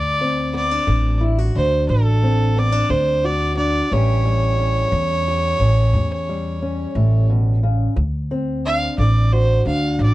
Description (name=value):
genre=acoustic country blues, solo or duo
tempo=59 BPM (dotted quarters)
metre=12/8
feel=straight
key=unclear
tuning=A4 = 440 Hz
part: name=warm fiddle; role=melody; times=0.0-10.1 s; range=A4 to F5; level=-21 LUFS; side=right 1 dB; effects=none
part: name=fingerpicked old ladder-braced acoustic guitar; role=accompaniment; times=0.0-10.1 s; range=D2 to G4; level=-24 LUFS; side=left 2 dB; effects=none
part: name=upright bass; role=bass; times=0.0-10.1 s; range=A1 to E2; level=-18 LUFS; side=equal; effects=none
room=light reverb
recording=dark, warm production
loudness=-16 LUFS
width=side -16 dB against mid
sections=0.0-8.0 A section; 8.0-10.1 B section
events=fiddle solo 8.0-10.1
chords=0.0 D7; 3.9 A7; 8.0 D7